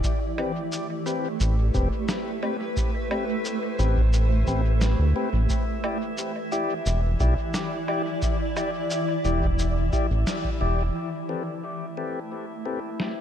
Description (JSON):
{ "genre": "ambient dub", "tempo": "88 BPM", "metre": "4/4", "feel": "straight", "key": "A minor", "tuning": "A4 = 440 Hz", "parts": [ { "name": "granular cloud pad", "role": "sustained chords", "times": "0.0-13.2 s", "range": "E3 to D5", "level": "-30 LUFS", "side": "right 1 dB", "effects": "built-in reverb" }, { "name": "round analog bass", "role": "bass", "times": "0.0-10.9 s", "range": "E1 to D2", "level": "-22 LUFS", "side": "equal", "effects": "tube saturation" }, { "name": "electronic cabasa, woodblock and snare drum", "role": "drums", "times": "0.0-13.1 s", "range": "none", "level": "-33 LUFS", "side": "right 1 dB", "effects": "low-pass filter on perc, low-pass filter on snare, dub echo" }, { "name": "electronic kick drum", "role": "drums", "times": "0.0-10.6 s", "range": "none", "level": "-28 LUFS", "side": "equal", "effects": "none" }, { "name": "drifting glass-harmonics texture", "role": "texture", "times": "1.0-13.2 s", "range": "E4 to E5", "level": "-38 LUFS", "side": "equal", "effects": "chorus, built-in reverb" }, { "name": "mellow tonewheel organ", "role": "stabs", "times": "0.4-12.8 s", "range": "C4 to D5", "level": "-31 LUFS", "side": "left 4 dB", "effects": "slow rotary speaker, dub echo" } ], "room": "light reverb", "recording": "none", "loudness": "-23 LUFS", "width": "side -10 dB against mid", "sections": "0.0-11.0 A section; 11.0-13.2 B section", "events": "band accent 10.3-10.6; filter sweep on ambient pad 11.0-13.2", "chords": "0.0 Am9; 5.5 Em7; 11.0 Am9" }